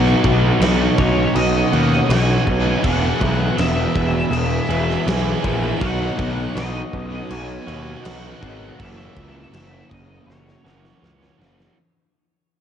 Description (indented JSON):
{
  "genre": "rock, shoegaze and dream pop",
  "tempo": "81 BPM",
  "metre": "4/4",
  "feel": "straight",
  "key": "B major",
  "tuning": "A4 = 440 Hz",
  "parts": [
    { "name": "phased string machine", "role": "sustained chords", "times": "0.0-11.8 s", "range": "E4 to B5", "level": "-31 LUFS", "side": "equal", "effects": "ensemble chorus, phaser, cassette tape" },
    { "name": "electric guitar through a small old amp", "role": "arpeggios", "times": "0.0-11.8 s", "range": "D#3 to G#4", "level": "-31 LUFS", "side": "left 1 dB", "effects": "none" },
    { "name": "biting overdriven guitar", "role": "riff", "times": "0.0-11.8 s", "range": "E2 to G#4", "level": "-24 LUFS", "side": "right 10 dB", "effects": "reverse reverb, cassette tape" },
    { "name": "crunchy overdriven guitar", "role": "riff", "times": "0.0-11.8 s", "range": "E2 to G#4", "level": "-25 LUFS", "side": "left 10 dB", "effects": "lush chorus, cassette tape" },
    { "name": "fuzz picked electric bass", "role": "bass", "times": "0.0-11.7 s", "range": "E1 to D#2", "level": "-21 LUFS", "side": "equal", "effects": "overdrive" },
    { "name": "huge arena drum kit", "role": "drums", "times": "0.1-11.8 s", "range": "crash cymbal, kick drum, snare drum", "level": "-25 LUFS", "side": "equal", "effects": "cassette tape" },
    { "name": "octave-fuzz lead guitar", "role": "melody", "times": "1.0-11.4 s", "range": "C#5 to G#5", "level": "-29 LUFS", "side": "left 1 dB", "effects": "distortion, cassette tape, tape echo" }
  ],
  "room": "little or no reverb",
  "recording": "home recording on cassette",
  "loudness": "-16 LUFS",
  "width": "side -9 dB against mid",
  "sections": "0.0-11.8 A section",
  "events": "fade-out 0.0-11.8; drum fill 10.3-11.8",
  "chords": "0.0 Badd9; 2.8 E; 5.8 Badd9; 8.8 F#7"
}